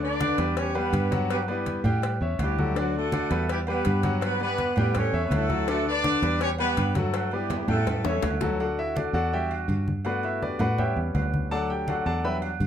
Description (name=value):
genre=latin, salsa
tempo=164 BPM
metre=4/4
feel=straight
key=D major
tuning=A4 = 440 Hz
part: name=dark horn section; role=melody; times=0.0-8.4 s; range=F#3 to D5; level=-27 LUFS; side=equal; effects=none
part: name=bright grand piano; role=accompaniment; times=0.0-12.5 s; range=D3 to B5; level=-29 LUFS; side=left 2 dB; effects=none
part: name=fingered electric bass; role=bass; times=0.0-12.7 s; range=D2 to A2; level=-28 LUFS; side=right 1 dB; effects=none
part: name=congas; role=percussion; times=0.0-12.7 s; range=none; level=-32 LUFS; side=equal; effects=none
part: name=agogo bells and timbales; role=percussion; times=0.2-12.7 s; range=none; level=-35 LUFS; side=right 8 dB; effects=none
part: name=cowbell and bongos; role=percussion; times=0.2-8.5 s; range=none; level=-36 LUFS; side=left 8 dB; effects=none
room=moderate studio ambience, RT60 0.5 s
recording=none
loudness=-23 LUFS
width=side -9 dB against mid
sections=0.0-8.6 A section; 8.6-12.7 B section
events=drum fill 7.5-8.6; grand piano solo 8.6-12.7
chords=0.0 N.C.; 0.6 Em; 1.3 Gmaj7; 2.0 A7; 2.8 D; 3.5 Em; 4.2 Gmaj7; 5.0 A7; 5.7 D; 6.4 Em; 7.1 Gmaj7; 7.9 A7; 8.6 D; 9.3 Em7; 10.1 Gmaj7; 10.8 A7; 11.5 D